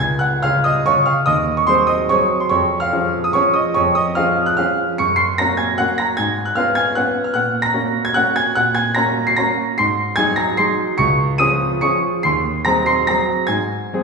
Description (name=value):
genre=classical, piano waltz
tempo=137-158 BPM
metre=3/4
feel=rubato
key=Db major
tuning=A4 = 439 Hz
part: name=clear grand piano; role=solo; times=0.0-14.0 s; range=Db2 to Eb7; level=-15 LUFS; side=right 1 dB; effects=none
room=wet recital hall reverb, RT60 1.6 s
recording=recorded in a church or concert hall, studio reverb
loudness=-15 LUFS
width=side -4 dB against mid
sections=0.0-14.0 A section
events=none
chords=0.0 Db; 1.3 Ab7/Eb; 2.5 Db/F; 5.0 Gb; 6.2 Db7/Ab; 7.4 Gb/Bb; 9.8 Ab7; 11.0 Db; 12.2 Ab7/Eb